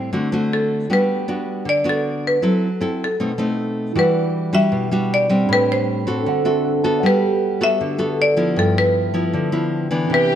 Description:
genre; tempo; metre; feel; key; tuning
bossa nova; 156 BPM; 4/4; straight; G major; A4 = 439 Hz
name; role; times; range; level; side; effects
marimba with hard mallets; melody; 0.0-10.4 s; A4 to E5; -20 LUFS; equal; none
nylon-string guitar; accompaniment; 0.0-10.4 s; G2 to A4; -19 LUFS; equal; none
mellow tine electric piano; accompaniment; 3.9-10.4 s; C4 to B5; -25 LUFS; right 4 dB; phaser
warm symphonic violin section; second line; 10.1-10.4 s; G4; -22 LUFS; left 2 dB; none
room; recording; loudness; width
moderate plate reverb, RT60 2.7 s; none; -17 LUFS; side -10 dB against mid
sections
0.0-4.0 A section; 4.0-10.4 B section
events
tine electric piano fill 6.3-7.0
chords
0.1 D7; 0.9 Gmaj7; 2.4 F#m7b5; 3.2 B7b9; 4.0 Em9; 5.5 Am11; 6.3 D7; 7.0 Gmaj9; 8.6 G13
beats
0.13 0.51 | 0.89 1.28 1.66 2.05 | 2.43 2.81 3.20 3.58 | 3.96 4.35 4.73 5.12 | 5.50 5.88 6.27 6.65 | 7.03 7.42 7.80 8.18 | 8.57 8.95 9.34 9.72 | 10.10

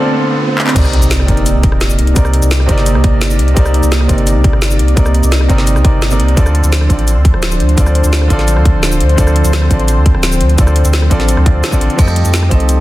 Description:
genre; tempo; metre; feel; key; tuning
liquid drum and bass; 171 BPM; 4/4; straight; unclear; A4 = 441 Hz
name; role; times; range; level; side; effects
clear concert grand piano; accompaniment; 0.0-12.8 s; C3 to Eb5; -18 LUFS; right 1 dB; digital delay
warm analog pad; sustained chords; 0.0-12.8 s; F3 to D5; -20 LUFS; equal; chorus
vibraphone with hard mallets; arpeggios; 0.0-0.8, 12.0-12.8 s; A3 to F4; -21 LUFS; right 1 dB; digital delay
warm sub bass; bass; 0.0-12.8 s; D1 to F2; -12 LUFS; equal; high-pass filter
riser and sub drop; sound effects; 0.0-2.2 s; none; -18 LUFS; equal; none
garage drum kit; drums; 0.6-12.8 s; crash cymbal, handclaps, hi-hat, rim click, shaker, snare drum; -19 LUFS; equal; studio reverb
electronic kick drum; drums; 0.8-12.6 s; none; -11 LUFS; equal; studio reverb
room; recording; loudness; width
light reverb; dense, heavily limited modern master; -9 LUFS; side -16 dB against mid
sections
0.8-12.8 A section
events
riser 0.0-0.8; break 0.1-0.8; drum fill 0.6; drop 0.8-12.8; impact 0.8-2.2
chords
0.0 Dm7; 0.8 Cm9; 6.4 Dm7; 12.0 F9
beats
0.06 0.41 | 0.76 1.11 1.46 1.81 | 2.16 2.51 2.86 3.21 | 3.56 3.92 4.27 4.62 | 4.97 5.32 5.67 6.02 | 6.37 6.72 7.07 7.42 | 7.78 8.13 8.48 8.83 | 9.18 9.53 9.88 10.23 | 10.58 10.93 11.29 11.63 | 11.99 12.34 12.69

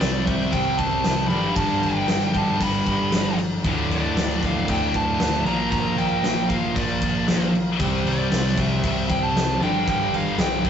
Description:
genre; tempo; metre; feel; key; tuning
hard rock; 116 BPM; 4/4; straight; unclear; A4 = 441 Hz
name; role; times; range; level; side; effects
high-gain lead guitar; melody; 0.0-10.7 s; C5 to B5; -26 LUFS; right 1 dB; distortion
overdriven tonewheel organ; sustained chords; 0.0-10.7 s; G3 to E5; -37 LUFS; equal; none
distorted electric guitar; riff; 0.0-10.7 s; D2 to C4; -28 LUFS; left 1 dB; overdrive
high-gain distorted guitar; riff; 0.0-10.7 s; D2 to C4; -28 LUFS; left 6 dB; distortion
overdriven electric guitar; riff; 0.0-10.7 s; D2 to C4; -29 LUFS; right 5 dB; none
hollow-body short-scale picked electric bass; bass; 0.0-10.7 s; D1 to C2; -29 LUFS; equal; none
huge arena drum kit; drums; 0.0-10.7 s; crash cymbal, kick drum, snare drum; -24 LUFS; equal; none
room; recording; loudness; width
moderate studio reverb, RT60 0.6 s; rough rehearsal-room recording, warm saturation, nothing above 7.8 kHz; -19 LUFS; side -8 dB against mid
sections
0.0-10.7 A section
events
none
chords
0.0 C5; 1.3 G; 3.6 D5; 5.5 Bb; 7.8 C; 9.6 G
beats
0.02 0.54 1.05 | 1.57 2.09 2.61 3.13 | 3.65 4.17 4.68 5.20 | 5.72 6.24 6.76 7.27 | 7.79 8.31 8.83 9.35 | 9.87 10.39

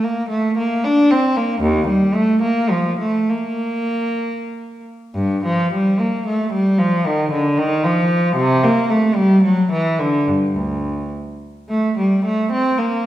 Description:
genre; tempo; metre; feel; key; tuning
classical, baroque-style suite movement for unaccompanied cello; 92-117 BPM; 3/4; rubato; Bb major, G minor from 5.1 s; A4 = 437 Hz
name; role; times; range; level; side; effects
rich cello; solo; 0.0-13.1 s; D2 to D4; -16 LUFS; equal; none
room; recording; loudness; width
wet recital hall reverb, RT60 1.4 s; recorded in a church or concert hall; -15 LUFS; side -13 dB against mid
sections
0.0-5.1 A section; 5.1-13.1 A section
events
none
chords
none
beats
| 0.03 0.57 1.10 | 1.61 2.15 2.70 | 3.28 3.90 4.51 | 5.14 5.71 6.25 | 6.78 7.30 7.82 | 8.35 8.88 9.43 | 9.98 10.54 11.11 | 11.69 12.25 12.79

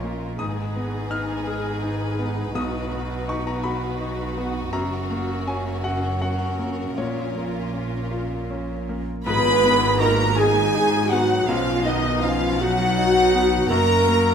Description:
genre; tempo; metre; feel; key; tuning
cinematic, emotional film score for orchestra; 54 BPM (dotted quarters); 6/8; rubato; G# dorian; A4 = 440 Hz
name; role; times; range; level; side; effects
rich chamber violin section; melody; 0.0-14.3 s; A#4 to B5; -32 LUFS; left 2 dB; none
warm symphonic violin section; second line; 0.0-14.3 s; E#4 to B5; -28 LUFS; left 2 dB; none
bright baby grand piano; accompaniment; 0.0-14.3 s; B1 to E#6; -28 LUFS; left 1 dB; none
dark symphonic viola section; accompaniment; 0.0-14.3 s; C#4 to B4; -25 LUFS; right 2 dB; none
dark symphonic double bass section; bass; 0.0-14.3 s; F#1 to B1; -29 LUFS; right 2 dB; none
rich studio cello section; bass; 0.0-14.3 s; F#2 to B2; -30 LUFS; right 2 dB; none
mellow clarinet; second line; 9.3-14.3 s; B3 to G#4; -29 LUFS; left 2 dB; none
silver concert flute; second line; 9.3-14.3 s; D#5 to B5; -29 LUFS; left 2 dB; none
mellow French horn section; sustained chords; 9.3-14.3 s; D#3 to B3; -26 LUFS; left 4 dB; none
tam-tam; percussion; 9.3-12.2 s; none; -34 LUFS; left 4 dB; none
room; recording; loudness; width
wet scoring stage reverb, RT60 1.5 s; none; -20 LUFS; side -7 dB against mid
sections
0.0-9.3 A section; 9.3-14.3 B section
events
band accent 9.3-10.0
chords
0.4 G#m; 2.6 B; 4.7 F#; 7.0 A#m; 9.3 G#m; 11.5 B; 13.7 F#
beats
| 0.39 1.47 | 2.56 3.65 | 4.74 5.84 | 6.97 8.11 | 9.26 10.37 | 11.47 12.59 | 13.70

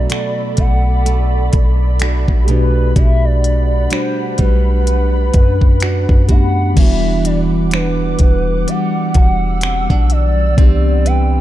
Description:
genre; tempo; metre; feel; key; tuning
contemporary R&B; 63 BPM; 4/4; swing 58% on 16ths; E minor; A4 = 441 Hz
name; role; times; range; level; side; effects
gliding portamento lead; melody; 0.0-11.4 s; B4 to G5; -22 LUFS; equal; chorus
mellow tine electric piano; accompaniment; 0.0-11.4 s; B2 to G4; -23 LUFS; left 2 dB; medium stereo tremolo
ethereal airy pad; sustained chords; 0.0-11.4 s; G3 to E6; -24 LUFS; left 1 dB; ensemble chorus, built-in reverb, sidechain pumping
nylon-string guitar; arpeggios; 0.0-11.4 s; B2 to B4; -22 LUFS; right 6 dB; none
warm 808-style bass; bass; 0.0-11.4 s; E1 to F#2; -15 LUFS; equal; none
smooth R&B drum kit; drums; 0.1-11.3 s; crash cymbal, finger snaps, hi-hat, kick drum; -13 LUFS; equal; none
room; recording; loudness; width
little or no reverb; dark, warm production; -11 LUFS; side -14 dB against mid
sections
0.0-6.8 A section; 6.8-11.4 B section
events
none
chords
0.0 Bm7; 2.5 Gmaj7/B; 6.8 Em9; 10.6 Cmaj9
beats
0.10 1.05 2.01 | 2.96 3.91 4.86 5.82 | 6.77 7.72 8.67 9.63 | 10.58

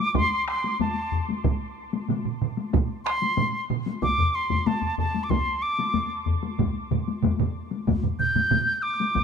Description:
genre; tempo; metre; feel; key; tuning
japanese traditional, taiko drum ensemble; 93 BPM; 4/4; straight; unclear; A4 = 440 Hz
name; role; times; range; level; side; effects
mellow piccolo; melody; 0.0-9.2 s; A5 to G6; -26 LUFS; equal; slapback echo
taiko ensemble; percussion; 0.1-9.2 s; none; -26 LUFS; right 3 dB; none
taiko ensemble; percussion; 0.2-9.2 s; none; -29 LUFS; left 8 dB; none
taiko ensemble; percussion; 0.2-9.2 s; none; -29 LUFS; left 2 dB; none
taiko ensemble; percussion; 1.4-8.7 s; none; -27 LUFS; right 8 dB; none
room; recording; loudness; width
light reverb; dark, warm production; -23 LUFS; side -6 dB against mid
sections
0.0-9.2 A section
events
none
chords
none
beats
0.15 0.80 | 1.44 2.08 2.73 3.37 | 4.02 4.66 5.30 5.95 | 6.59 7.23 7.88 8.52 | 9.16

